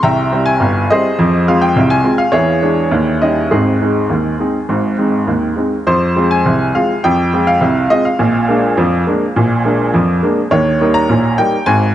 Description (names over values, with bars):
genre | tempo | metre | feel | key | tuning
ragtime piano | 103 BPM | 2/4 | straight | unclear | A4 = 441 Hz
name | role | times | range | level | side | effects
clear upright piano | solo | 0.0-11.9 s | G1 to Bb5 | -11 LUFS | equal | dub echo
room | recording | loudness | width
light reverb, small room ambience | echo-heavy mix, cassette tape, nothing above 10.6 kHz | -11 LUFS | side -12 dB against mid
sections
0.0-5.9 A section; 5.9-11.9 B section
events
none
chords
0.0 C; 1.2 Fm; 2.3 E7; 2.9 Eb7; 3.5 Ab; 5.9 Fm; 8.2 Bb7; 10.5 Eb